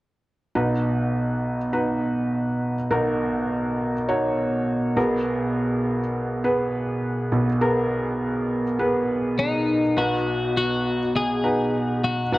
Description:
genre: pop.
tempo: 102 BPM.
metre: 4/4.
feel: straight.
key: B major.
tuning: A4 = 436 Hz.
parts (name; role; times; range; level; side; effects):
felt-muted upright piano; accompaniment; 0.6-12.4 s; B1 to C#5; -22 LUFS; right 1 dB; none.
twelve-string electric guitar; melody; 9.4-12.4 s; D#4 to G#4; -22 LUFS; left 2 dB; none.
room: wet large studio reverb, RT60 1.4 s.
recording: worn, warbling old tape, cassette tape, warbly pitch drift.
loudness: -21 LUFS.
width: side -18 dB against mid.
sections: 0.5-10.0 A section; 10.0-12.4 B section.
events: none.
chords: 0.5 B; 5.0 G#madd9/B; 10.0 B.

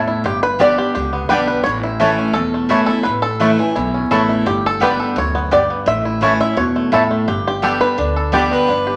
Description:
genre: bluegrass.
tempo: 171 BPM.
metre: 4/4.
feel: straight.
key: unclear.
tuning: A4 = 440 Hz.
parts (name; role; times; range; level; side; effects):
bluegrass banjo; melody; 0.0-9.0 s; E3 to E5; -20 LUFS; equal; none.
picked steel-string acoustic guitar; accompaniment; 0.0-9.0 s; E2 to G4; -22 LUFS; equal; none.
upright bass; bass; 0.0-8.9 s; E1 to E2; -29 LUFS; equal; none.
mandolin; stabs; 0.6-8.4 s; A3 to A5; -21 LUFS; equal; none.
rich fiddle; second line; 8.5-9.0 s; B4; -19 LUFS; equal; none.
room: wet large studio reverb, RT60 1.1 s.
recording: vinyl crackle.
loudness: -16 LUFS.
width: mono.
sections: 0.0-7.3 A section; 7.3-9.0 A section.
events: five-string banjo solo 0.0-9.0.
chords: 0.2 G; 1.7 A; 4.5 G; 5.9 A; 7.3 G.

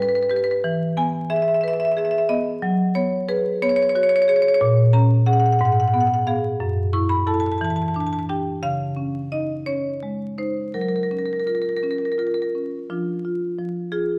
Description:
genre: classical, contemporary piece for solo marimba.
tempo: 55-61 BPM (dotted quarters).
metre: 6/8.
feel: rubato.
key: unclear.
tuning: A4 = 439 Hz.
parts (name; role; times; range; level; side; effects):
marimba with medium hard mallets; solo; 0.0-14.2 s; Gb2 to Db6; -21 LUFS; equal; none.
room: wet recital hall reverb, RT60 1.4 s.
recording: vinyl crackle.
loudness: -21 LUFS.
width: mono.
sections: 0.0-12.9 A section; 12.9-14.2 B section.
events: none.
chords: 0.0 G#mmaj7; 0.6 E; 2.6 F#sus24; 4.6 Bbm7; 5.6 Abm7; 6.6 Gbm7; 7.6 Em7; 8.6 Dbadd9; 10.7 Gbmaj7; 12.9 Fm6.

